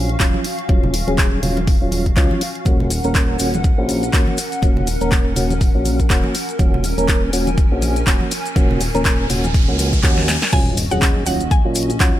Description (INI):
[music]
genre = deep house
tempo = 122 BPM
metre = 4/4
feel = swing 57% on 16ths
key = unclear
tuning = A4 = 438 Hz
[part]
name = hollow soft pad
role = sustained chords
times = 0.0-12.2 s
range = Db4 to Ab5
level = -28 LUFS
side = equal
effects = ensemble chorus, sidechain pumping
[part]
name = percussive tonewheel organ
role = stabs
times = 0.0-12.2 s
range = Gb3 to Bb4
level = -22 LUFS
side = equal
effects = chorus vibrato, slow rotary speaker, sidechain pumping, ping-pong delay
[part]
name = smooth synth bass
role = bass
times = 0.0-12.1 s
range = Eb1 to Eb2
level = -22 LUFS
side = equal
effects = sidechain pumping
[part]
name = deep house drum kit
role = drums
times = 0.1-12.1 s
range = crash cymbal, handclaps, hi-hat, snare drum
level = -23 LUFS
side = equal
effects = none
[part]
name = electronic kick drum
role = drums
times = 0.2-12.1 s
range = none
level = -16 LUFS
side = equal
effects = none
[part]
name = congas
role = percussion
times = 0.3-10.3 s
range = none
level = -28 LUFS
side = right 1 dB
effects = none
[part]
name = maracas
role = percussion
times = 2.7-12.1 s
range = none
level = -30 LUFS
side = left 5 dB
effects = none
[part]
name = riser and sub drop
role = sound effects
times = 7.7-12.2 s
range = none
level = -27 LUFS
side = equal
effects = none
[part]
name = mallet-like synth pluck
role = melody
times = 10.5-12.2 s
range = Gb5 to Ab5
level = -25 LUFS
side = right 1 dB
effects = chorus, vintage 12-bit sampler grit
[sound]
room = little or no reverb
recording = none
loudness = -15 LUFS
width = side -13 dB against mid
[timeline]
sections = 0.0-10.5 A section; 10.5-12.2 B section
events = riser 7.7-10.5; drum fill 10.2-10.5; drop 10.5-12.2; impact 10.5-12.2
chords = 0.0 Ebm9; 2.7 Gb/Eb; 10.5 Ebm9